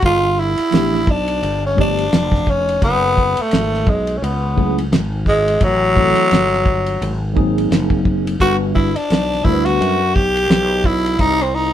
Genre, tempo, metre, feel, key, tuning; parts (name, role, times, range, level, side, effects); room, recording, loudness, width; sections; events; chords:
hip hop, jazz-hop; 86 BPM; 4/4; swing 60% on 16ths; A4 = 442 Hz
growling tenor saxophone; melody; 0.0-11.7 s; F#3 to G4; -16 LUFS; left 1 dB
fretless electric bass; bass; 0.0-11.7 s; F1 to F#2; -21 LUFS; equal
cloth-damped thuddy drum kit; drums; 0.0-11.4 s; hi-hat, kick drum, ride cymbal, snare drum; -19 LUFS; equal
mellow tine electric piano; accompaniment; 0.7-10.0 s; E3 to B4; -20 LUFS; equal; medium stereo tremolo
light reverb; band playing live in one room; -14 LUFS; side -11 dB against mid
0.0-11.7 A section
tenor saxophone solo 0.0-11.7
0.0 G9; 2.8 F#sus2; 5.6 Am7; 7.0 G#9; 8.4 Gmaj7; 11.2 Cm